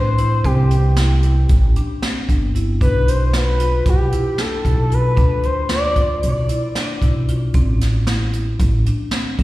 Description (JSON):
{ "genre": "progressive instrumental, band music in an uneven meter", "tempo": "228 BPM (eighths)", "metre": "9/8", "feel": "straight", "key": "A minor", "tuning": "A4 = 441 Hz", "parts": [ { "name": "expressive portamento lead", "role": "melody", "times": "0.0-6.3 s", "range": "G4 to D5", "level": "-22 LUFS", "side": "left 1 dB", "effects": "chorus, slapback echo, tape echo" }, { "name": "marimba with medium mallets", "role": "arpeggios", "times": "0.0-9.4 s", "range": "C4 to F4", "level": "-28 LUFS", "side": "left 1 dB", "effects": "slapback echo, tape echo" }, { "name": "upright bass", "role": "bass", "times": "0.0-9.4 s", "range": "G1 to D2", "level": "-17 LUFS", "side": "equal", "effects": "none" }, { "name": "jazz brush drum kit", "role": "drums", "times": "0.2-9.4 s", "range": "hi-hat, kick drum, snare drum", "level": "-20 LUFS", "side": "equal", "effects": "none" } ], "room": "small room ambience", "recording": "live gig heard through the venue's PA, recital hall reverb", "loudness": "-15 LUFS", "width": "side -17 dB against mid", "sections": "0.0-9.4 A section", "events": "none", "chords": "0.0 Am7; 2.8 Bdim; 7.5 Am" }